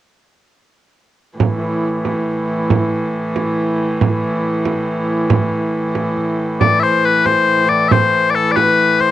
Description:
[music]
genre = medieval dance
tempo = 92 BPM (dotted quarters)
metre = 6/8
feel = straight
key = A minor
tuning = A4 = 440 Hz
[part]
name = rich hurdy-gurdy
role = drone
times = 1.4-9.1 s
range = A2 to E3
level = -18 LUFS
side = right 1 dB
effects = cassette tape
[part]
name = frame drum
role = percussion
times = 1.4-9.1 s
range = none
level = -17 LUFS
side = right 4 dB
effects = none
[part]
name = loud bright bagpipes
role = melody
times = 6.6-9.1 s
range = A4 to E5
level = -12 LUFS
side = left 5 dB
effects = cassette tape
[sound]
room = moderate booth ambience, RT60 0.2 s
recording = home recording on cassette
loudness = -14 LUFS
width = side -13 dB against mid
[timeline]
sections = 1.4-6.6 A section; 6.6-9.1 B section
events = none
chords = none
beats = | 1.40 2.05 | 2.70 3.35 | 4.00 4.66 | 5.31 5.96 | 6.61 7.26 | 7.91 8.56

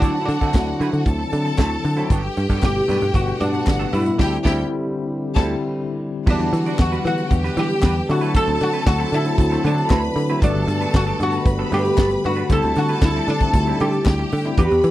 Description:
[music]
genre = disco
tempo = 116 BPM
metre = 4/4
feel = straight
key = unclear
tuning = A4 = 440 Hz
[part]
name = oud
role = melody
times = 0.0-14.9 s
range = D4 to A4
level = -23 LUFS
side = equal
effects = none
[part]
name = clear studio string section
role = second line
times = 0.0-14.9 s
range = F#4 to B5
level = -27 LUFS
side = left 1 dB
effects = none
[part]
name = barky tine electric piano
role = accompaniment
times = 0.0-14.9 s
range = A2 to G4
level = -26 LUFS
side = left 3 dB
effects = medium stereo tremolo
[part]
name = semi-hollow electric guitar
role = accompaniment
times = 0.0-14.9 s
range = F#3 to D5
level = -30 LUFS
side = right 8 dB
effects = lush chorus
[part]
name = dark French horn section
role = sustained chords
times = 0.0-14.9 s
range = D3 to B4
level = -31 LUFS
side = right 1 dB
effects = none
[part]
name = picked electric bass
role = bass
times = 0.0-14.9 s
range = G1 to E3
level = -22 LUFS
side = equal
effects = none
[part]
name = tight funk drum kit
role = drums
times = 0.0-14.9 s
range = crash cymbal, hi-hat, kick drum, snare drum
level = -18 LUFS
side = equal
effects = none
[part]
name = group handclap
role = percussion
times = 0.5-14.2 s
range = none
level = -35 LUFS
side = left 7 dB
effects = none
[sound]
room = little or no reverb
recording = dry, close 1970s-style studio recording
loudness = -17 LUFS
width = side -14 dB against mid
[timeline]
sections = 0.0-6.3 A section; 6.3-14.9 B section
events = band accent 4.2-6.3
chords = 0.0 D9; 2.1 Gmaj9; 4.2 D9sus4; 6.3 Em9; 8.1 D9; 10.4 Gmaj9; 12.5 D9sus4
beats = | 0.02 0.54 1.06 1.58 | 2.10 2.63 3.15 3.67 | 4.19 4.71 5.23 5.75 | 6.27 6.79 7.31 7.83 | 8.35 8.87 9.38 9.90 | 10.42 10.94 11.46 11.98 | 12.50 13.02 13.54 14.06 | 14.58

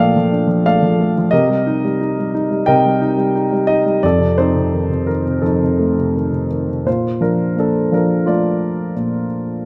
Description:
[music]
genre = classical, lyrical solo piano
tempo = 86 BPM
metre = 4/4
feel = uneven beats, rubato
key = Bb major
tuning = A4 = 440 Hz
[part]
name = dark concert grand piano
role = solo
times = 0.0-9.7 s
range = F2 to G5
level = -16 LUFS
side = equal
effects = none
[sound]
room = moderate concert hall reverb, RT60 1.9 s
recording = none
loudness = -17 LUFS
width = mono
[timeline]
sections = 0.0-6.9 A section; 6.9-9.7 B section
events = none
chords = 0.0 Bbmaj7; 1.3 Cm7; 4.0 F7; 6.9 Bbmaj7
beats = 0.65 | 1.32 2.00 2.67 3.34 | 4.03 4.73 5.44 6.16 | 6.87 7.57 8.26 8.96 | 9.65

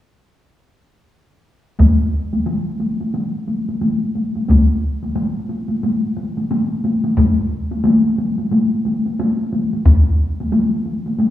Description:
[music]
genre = japanese traditional, taiko drum ensemble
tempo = 90 BPM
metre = 4/4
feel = swing 60% on 16ths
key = none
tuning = none
[part]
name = taiko ensemble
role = percussion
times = 1.8-11.3 s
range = none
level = -17 LUFS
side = left 1 dB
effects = none
[part]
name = taiko ensemble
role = percussion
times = 1.8-10.0 s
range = none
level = -14 LUFS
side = equal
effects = none
[sound]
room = wet recital hall reverb, RT60 1.5 s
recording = small room reverb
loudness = -16 LUFS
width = side -13 dB against mid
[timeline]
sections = 1.8-11.3 A section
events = none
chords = none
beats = | 1.80 2.47 3.15 3.82 | 4.49 5.17 5.84 6.51 | 7.18 7.85 8.52 9.18 | 9.85 10.51 11.18

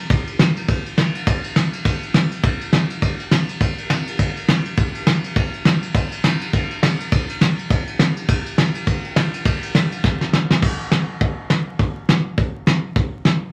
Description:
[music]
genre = rock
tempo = 205 BPM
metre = 4/4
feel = swing 59% on 8ths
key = none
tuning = none
[part]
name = soft brush drum kit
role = drums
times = 0.1-13.3 s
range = crash cymbal, hi-hat, kick drum, ride cymbal, snare drum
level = -19 LUFS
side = equal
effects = none
[sound]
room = wet club reverb, RT60 0.6 s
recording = vinyl crackle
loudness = -20 LUFS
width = mono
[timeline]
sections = 0.0-10.6 A section; 10.6-13.5 B section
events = drum fill 10.0-10.6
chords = none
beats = | 0.10 0.39 0.68 0.97 | 1.27 1.56 1.85 2.14 | 2.44 2.73 3.02 3.31 | 3.61 3.90 4.19 4.49 | 4.78 5.07 5.36 5.66 | 5.95 6.24 6.53 6.83 | 7.12 7.41 7.70 8.00 | 8.29 8.58 8.87 9.16 | 9.46 9.75 10.04 10.33 | 10.63 10.92 11.21 11.50 | 11.79 12.09 12.38 12.67 | 12.96 13.25

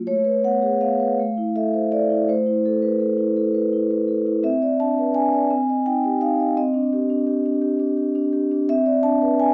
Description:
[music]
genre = classical, contemporary piece for solo vibraphone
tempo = 56 BPM (dotted quarters)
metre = 6/8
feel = rubato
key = unclear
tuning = A4 = 436 Hz
[part]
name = vibraphone with soft mallets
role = solo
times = 0.0-9.5 s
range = A3 to A5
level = -21 LUFS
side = equal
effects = none
[sound]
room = light reverb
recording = dark, warm production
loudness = -21 LUFS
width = mono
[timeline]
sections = 0.1-9.5 A section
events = none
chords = 0.1 Asus2; 1.2 Amadd11; 2.3 Cmaj7/A; 4.4 Csus2; 5.5 Cmadd11; 6.6 D#maj7/C; 8.7 Csus2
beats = | 0.07 1.18 | 2.28 3.36 | 4.43 5.50 | 6.57 7.63 | 8.68

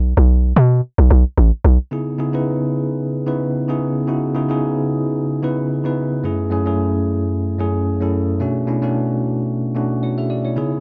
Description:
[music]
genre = amapiano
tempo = 111 BPM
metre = 4/4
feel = swing 55% on 16ths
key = C# minor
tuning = A4 = 443 Hz
[part]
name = hollow log drum bass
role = bass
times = 0.0-1.8 s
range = A1 to B2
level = -14 LUFS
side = equal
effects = none
[part]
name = bell-like tine electric piano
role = accompaniment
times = 1.9-10.8 s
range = F#2 to E5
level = -20 LUFS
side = equal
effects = none
[sound]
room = light reverb, digital ambience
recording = dark, warm production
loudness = -19 LUFS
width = mono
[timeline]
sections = 0.0-1.9 A section; 1.9-10.8 B section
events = drop 0.0-1.9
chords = 0.0 N.C.; 1.9 C#m9; 6.2 F#m9; 8.4 Bm9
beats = 0.29 0.83 1.38 | 1.92 2.46 3.00 3.54 | 4.08 4.62 5.16 5.70 | 6.24 6.78 7.32 7.86 | 8.40 8.94 9.48 10.02 | 10.56

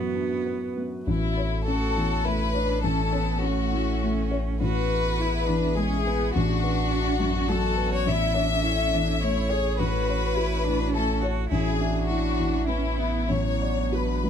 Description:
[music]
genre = neoclassical piano and strings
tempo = 103 BPM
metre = 3/4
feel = rubato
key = A major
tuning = A4 = 440 Hz
[part]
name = rich cello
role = second line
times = 0.0-14.3 s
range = F#3 to G#4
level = -32 LUFS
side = right 9 dB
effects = none
[part]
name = felt-muted upright piano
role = accompaniment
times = 0.0-14.3 s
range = A1 to E5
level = -28 LUFS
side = left 2 dB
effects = none
[part]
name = warbly tape-like pad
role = sustained chords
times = 0.0-14.3 s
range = A3 to E5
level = -34 LUFS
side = right 3 dB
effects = chorus, built-in reverb
[part]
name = clear chamber violin section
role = melody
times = 1.1-14.3 s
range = E4 to E5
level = -28 LUFS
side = left 4 dB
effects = none
[part]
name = punchy sub bass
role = bass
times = 1.1-14.3 s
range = A1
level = -28 LUFS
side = equal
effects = none
[sound]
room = light reverb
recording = close, detailed microphones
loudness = -23 LUFS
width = side -8 dB against mid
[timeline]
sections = 0.0-1.1 A section; 1.1-14.3 A section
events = none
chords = 0.0 Bm/A; 1.1 A; 2.8 F#m/A; 4.6 E/A; 6.4 Bm/A; 8.1 A; 9.8 F#m/A; 11.5 E/A; 13.3 Bm/A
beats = 0.47 | 1.08 1.68 2.26 | 2.85 3.44 4.03 | 4.62 5.20 5.78 | 6.36 6.93 7.50 | 8.07 8.64 9.22 | 9.79 10.37 10.94 | 11.51 12.09 12.68 | 13.30 13.93

